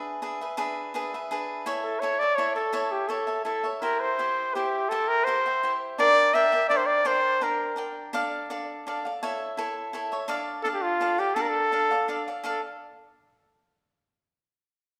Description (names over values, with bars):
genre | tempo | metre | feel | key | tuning
mexican folk, mariachi | 167 BPM | 3/4 | rubato | D minor | A4 = 440 Hz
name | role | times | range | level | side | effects
cavaquinho | accompaniment | 0.0-12.6 s | D4 to G5 | -33 LUFS | equal | none
warm trumpet | melody | 1.8-7.8, 10.6-12.6 s | F4 to E5 | -26 LUFS | equal | none
room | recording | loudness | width
wet recital hall reverb, RT60 1.5 s | none | -26 LUFS | mono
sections
0.0-12.4 A section; 12.4-13.5 B section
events
none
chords
0.0 E7; 1.7 A; 3.8 C; 6.0 Gm; 8.1 Dm; 9.2 A; 10.3 Dm